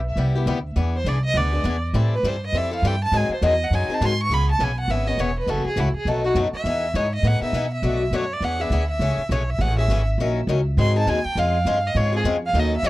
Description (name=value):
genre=acoustic string swing (jazz manouche)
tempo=204 BPM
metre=4/4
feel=swing 60% on 8ths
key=C# minor from 4.3 s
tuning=A4 = 440 Hz
part: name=upright bass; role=bass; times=0.0-12.9 s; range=E1 to B2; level=-22 LUFS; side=equal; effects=none
part: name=picked swing-style acoustic guitar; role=accompaniment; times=0.2-12.9 s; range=B2 to A#4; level=-25 LUFS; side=left 4 dB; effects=none
part: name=warm violin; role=melody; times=1.0-12.9 s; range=E4 to C#6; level=-25 LUFS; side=right 2 dB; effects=tape echo
room=light reverb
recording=dry, close 1970s-style studio recording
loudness=-19 LUFS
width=side -17 dB against mid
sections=0.0-4.3 A section; 4.3-12.9 A section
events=violin solo 0.0-12.9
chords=0.0 Cmaj7; 0.8 E7; 1.9 Am7; 3.1 G#7; 4.3 C#m7; 5.5 F#m7; 6.1 B7; 6.7 Emaj7; 7.8 Bm7; 8.4 E7; 9.0 Amaj7; 10.2 D#m7; 10.8 G#7; 11.4 C#maj7